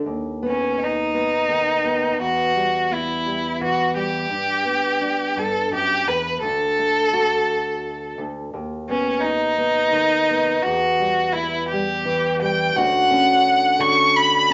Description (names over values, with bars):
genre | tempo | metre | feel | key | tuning
acoustic folk-pop ballad | 57 BPM (dotted quarters) | 6/8 | straight | D major | A4 = 440 Hz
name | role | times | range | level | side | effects
nylon-string guitar | accompaniment | 0.0-14.5 s | D2 to F#4 | -27 LUFS | equal | none
rich violin | melody | 0.5-14.5 s | C#4 to C#6 | -21 LUFS | equal | none
pedal harmonium | sustained chords | 12.7-14.5 s | D3 to F#4 | -30 LUFS | equal | none
room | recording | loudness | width
wet studio reverb, RT60 0.8 s | nothing above 7.7 kHz | -20 LUFS | mono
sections
0.0-12.7 A section; 12.7-14.5 B section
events
none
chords
0.1 B/D#; 2.2 Emadd9; 4.3 G; 6.4 D; 8.5 B/D#; 10.6 Emadd9; 12.7 Dmaj7